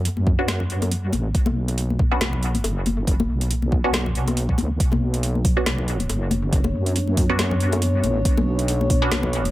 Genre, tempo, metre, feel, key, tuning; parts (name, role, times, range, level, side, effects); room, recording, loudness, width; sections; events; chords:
deep dubstep; 139 BPM; 4/4; swing 56% on 16ths, half-time; B minor; A4 = 439 Hz
deep soft wobble bass; bass; 0.0-9.5 s; F#1 to F#2; -22 LUFS; equal; chorus
garage drum kit; drums; 0.1-9.5 s; hi-hat, snare drum; -28 LUFS; right 1 dB; overdrive
congas and bongos; percussion; 0.2-9.5 s; -28 LUFS; left 3 dB; dub echo
electronic kick drum; drums; 0.3-9.0 s; -20 LUFS; equal; overdrive
filtered dub chord stab; stabs; 0.4-9.1 s; B3 to F#4; -28 LUFS; right 1 dB; phaser, dub echo
dark analog pad; sustained chords; 5.8-9.5 s; B3 to C#5; -27 LUFS; equal; chorus
light reverb; echo-heavy mix; -19 LUFS; side -16 dB against mid
0.0-9.5 A section
0.0 Bmadd9